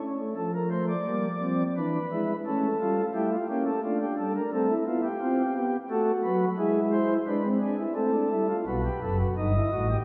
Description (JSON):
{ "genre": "classical, baroque-style 4-part fugue for pipe organ", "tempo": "87 BPM", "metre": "3/4", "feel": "straight", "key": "unclear", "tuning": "A4 = 440 Hz", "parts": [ { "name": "pipe organ, flutes", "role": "solo", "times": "0.0-10.0 s", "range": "F#1 to D#5", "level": "-27 LUFS", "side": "equal", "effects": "none" } ], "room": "wet concert hall reverb, RT60 2.4 s", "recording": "none", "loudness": "-27 LUFS", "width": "mono", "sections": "0.4-8.7 A section; 8.7-10.0 B section", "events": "none", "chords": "0.4 Dm/F; 1.8 E7; 2.5 A; 3.8 Dm/A; 4.5 Am; 5.9 B5/A; 6.6 E/G#; 8.0 Am; 8.7 B7" }